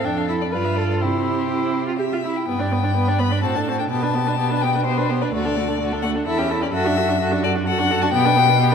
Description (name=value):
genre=quick classical-period movement for string quartet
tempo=127 BPM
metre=3/4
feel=straight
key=G major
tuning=A4 = 440 Hz
part: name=clear violin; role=melody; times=0.0-8.7 s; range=C5 to B5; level=-23 LUFS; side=left 9 dB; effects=none
part: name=warm violin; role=second line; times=0.0-8.7 s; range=F#4 to D5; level=-27 LUFS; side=left 3 dB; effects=none
part: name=clear viola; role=accompaniment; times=0.0-8.7 s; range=A3 to G4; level=-23 LUFS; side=right 2 dB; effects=none
part: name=rich cello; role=bass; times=0.1-8.7 s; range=D2 to C3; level=-23 LUFS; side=right 4 dB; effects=none
room=wet scoring stage reverb, RT60 1.9 s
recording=minimal, uncompressed stereo recording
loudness=-18 LUFS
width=side -6 dB against mid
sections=0.0-2.5 A section; 2.5-8.7 B section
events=none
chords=0.1 Dm/F; 0.5 G7; 1.0 C; 2.5 G; 3.4 D7/A; 3.9 G/B; 5.3 D; 6.3 A7/E; 6.7 D/F#; 8.1 G/B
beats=0.05 0.53 | 1.01 1.50 1.99 | 2.48 2.96 3.44 | 3.91 4.39 4.86 | 5.33 5.80 6.27 | 6.74 7.21 7.67 | 8.14 8.60